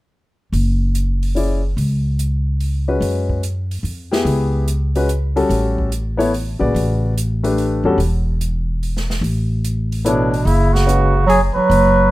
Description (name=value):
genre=modal jazz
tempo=145 BPM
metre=3/4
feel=swing 67% on 8ths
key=F# minor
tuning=A4 = 440 Hz
part: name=upright bass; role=bass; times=0.5-12.1 s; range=E1 to F#2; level=-18 LUFS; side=equal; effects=none
part: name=open jazz drum kit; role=drums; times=0.5-11.8 s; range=hi-hat, kick drum, snare drum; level=-30 LUFS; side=right 2 dB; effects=none
part: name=warm baby grand piano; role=accompaniment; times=1.4-8.0, 10.0-11.1 s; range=C#3 to D5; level=-19 LUFS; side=left 2 dB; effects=none
part: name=dark trumpet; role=melody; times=10.1-12.1 s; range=D4 to B4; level=-19 LUFS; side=left 1 dB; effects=none
part: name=breathy bass clarinet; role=second line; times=10.1-12.1 s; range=B2 to F#3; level=-16 LUFS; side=right 3 dB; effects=none
room=small room ambience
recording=rough home demo mix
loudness=-15 LUFS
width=side -17 dB against mid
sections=0.5-10.5 A section; 10.5-12.1 B section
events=none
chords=0.5 F#9sus4; 5.5 A9sus4; 10.5 F#sus4